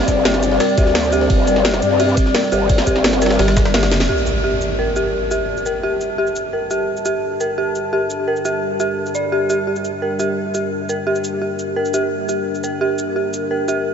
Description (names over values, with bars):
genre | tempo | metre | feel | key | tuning
dark technical drum and bass | 172 BPM | 4/4 | straight | G minor | A4 = 439 Hz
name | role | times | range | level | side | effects
dark analog pad | sustained chords | 0.0-13.9 s | G3 to A5 | -22 LUFS | left 2 dB | chorus, sidechain pumping
growl bass | bass | 0.0-3.4 s | G1 to G2 | -20 LUFS | equal | chorus, overdrive, sidechain pumping
drum and bass drum kit | drums | 0.1-13.8 s | cabasa, hi-hat, ride cymbal, snare drum | -23 LUFS | equal | none
electronic kick drum | drums | 0.1-3.6 s | none | -17 LUFS | equal | none
jungle sampler-style drum kit | drums | 0.1-4.1 s | ride cymbal, snare drum | -27 LUFS | equal | none
dark detuned synth bell | arpeggios | 0.3-13.8 s | G4 to D5 | -19 LUFS | right 1 dB | chorus, sidechain pumping, analog delay
vowel-sweep wobble bass | bass | 3.4-4.1 s | G1 | -18 LUFS | equal | chorus
impact | sound effects | 4.1-5.5 s | none | -26 LUFS | equal | none
room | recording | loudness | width
wet huge ambient reverb, RT60 7.6 s | dreamy mix soaked in reverb, nothing above 7.8 kHz | -16 LUFS | side -7 dB against mid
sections
0.0-4.1 A section; 4.1-13.9 B section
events
drop 0.0-4.1; drum fill 3.8; band accent 4.0; impact 4.1-5.5; filter sweep on analog synth pad 4.1-13.9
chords
0.0 G5